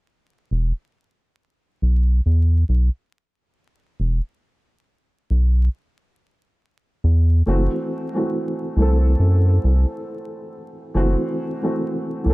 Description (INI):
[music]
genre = trip hop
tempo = 69 BPM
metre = 4/4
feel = swing 55% on 16ths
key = unclear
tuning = A4 = 439 Hz
[part]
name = round analog bass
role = bass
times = 0.5-12.3 s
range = E1 to F#2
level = -16 LUFS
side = equal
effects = none
[part]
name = warm upright piano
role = accompaniment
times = 7.5-12.3 s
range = E3 to A4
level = -23 LUFS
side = equal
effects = harmonic tremolo, tape echo
[sound]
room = studio reverb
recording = dark, warm production, vinyl crackle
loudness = -18 LUFS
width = side -21 dB against mid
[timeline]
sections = 0.5-12.3 A section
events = none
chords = 0.5 E5; 7.5 F#m7b5